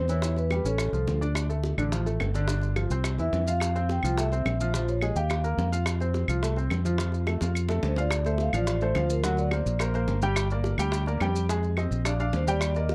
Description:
Afro-Cuban jazz; 213 BPM; 4/4; straight; F major; A4 = 438 Hz
vibraphone with soft mallets; melody; 0.0-1.2, 3.2-5.7, 7.9-9.8, 12.3-12.9 s; A4 to G5; -34 LUFS; equal
warm grand piano; accompaniment; 0.0-12.9 s; D3 to Ab5; -33 LUFS; equal
fingered electric bass; bass; 0.0-12.9 s; G1 to F2; -29 LUFS; equal
bongos; percussion; 0.1-12.9 s; -38 LUFS; equal
maracas; percussion; 0.1-12.9 s; -44 LUFS; equal
claves; percussion; 0.5-12.8 s; -36 LUFS; equal
light reverb; cassette tape; -27 LUFS; mono
0.0-8.1 A section; 8.1-12.9 B section
drum fill 7.4-8.1
0.2 Em; 0.8 Aaug; 1.4 Dm; 2.5 G5; 3.1 C; 3.6 Fmaj9; 4.7 Bb5; 5.3 Ebadd9; 5.9 F; 8.1 Dm7; 9.2 Daug7; 10.4 Gm7; 11.5 Fm7; 12.1 Bb

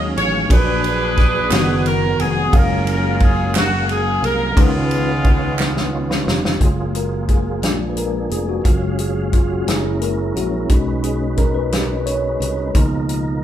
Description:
slow gospel; 59 BPM (dotted quarters); 6/8; straight; F# major; A4 = 441 Hz
mellow tine electric piano; accompaniment; 0.0-13.4 s; A#2 to E#5; -22 LUFS; left 2 dB; medium stereo tremolo
percussive tonewheel organ; sustained chords; 0.0-13.4 s; B2 to E#5; -26 LUFS; right 2 dB; slow rotary speaker, chorus vibrato
fingered electric bass; bass; 0.0-13.4 s; E#1 to D#2; -23 LUFS; right 1 dB
clear horn section; melody; 0.2-6.3 s; G#3 to C#5; -20 LUFS; right 1 dB
natural country drum kit; drums; 0.2-13.2 s; hi-hat, kick drum, ride cymbal, snare drum; -18 LUFS; equal
group handclap; percussion; 1.5-5.9 s; -27 LUFS; right 5 dB
moderate large studio reverb, RT60 0.9 s; band playing live in one room; -15 LUFS; side -11 dB against mid
0.0-6.6 A section; 6.6-13.4 B section
drum fill 5.6-6.6; tine electric piano solo 6.6-13.4
0.0 D#m11; 0.5 A#7b9b13; 1.5 B/F#; 2.5 F#maj9; 4.6 C#9; 6.6 F#maj9; 7.6 A#7; 8.6 C#add11/F#; 9.7 F#7; 10.7 B69; 12.8 C#13

